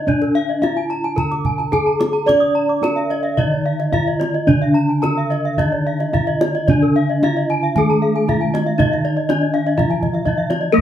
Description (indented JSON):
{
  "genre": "Balinese gamelan",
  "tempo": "109-129 BPM",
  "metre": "4/4",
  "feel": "straight",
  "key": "D pelog",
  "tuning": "A4 = 436 Hz",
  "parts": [
    { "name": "gamelan-type bronze metallophone", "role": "melody", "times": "0.0-10.8 s", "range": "Bb3-40c to D5", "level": "-21 LUFS", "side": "left 2 dB", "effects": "none" },
    { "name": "gamelan-type bronze metallophone", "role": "arpeggios", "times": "0.0-10.7 s", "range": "Bb4-40c to Eb6", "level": "-25 LUFS", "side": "right 3 dB", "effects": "none" },
    { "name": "gamelan-type bossed gongs", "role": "bass", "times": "0.0-10.8 s", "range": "D3 to D5", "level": "-21 LUFS", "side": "equal", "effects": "none" },
    { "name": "gamelan-type bronze metallophone", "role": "arpeggios", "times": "0.1-10.8 s", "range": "Bb4-40c to D6", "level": "-23 LUFS", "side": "left 3 dB", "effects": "none" },
    { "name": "kendang", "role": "percussion", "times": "0.1-10.6 s", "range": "none", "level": "-22 LUFS", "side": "right 2 dB", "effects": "none" },
    { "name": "gamelan-type bronze metallophone", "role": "accompaniment", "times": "2.3-10.8 s", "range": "D3 to D4", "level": "-22 LUFS", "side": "right 1 dB", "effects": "none" }
  ],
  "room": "wet studio reverb, RT60 0.6 s",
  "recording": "band playing live in one room, faint mains hum",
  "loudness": "-15 LUFS",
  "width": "side -10 dB against mid",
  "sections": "0.0-10.7 A section",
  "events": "none",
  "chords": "none",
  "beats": "| 0.07 0.63 1.18 1.73 | 2.28 2.83 3.38 3.93 | 4.48 5.03 5.58 6.13 | 6.68 7.22 7.76 8.28 | 8.79 9.29 9.78 10.26 | 10.73"
}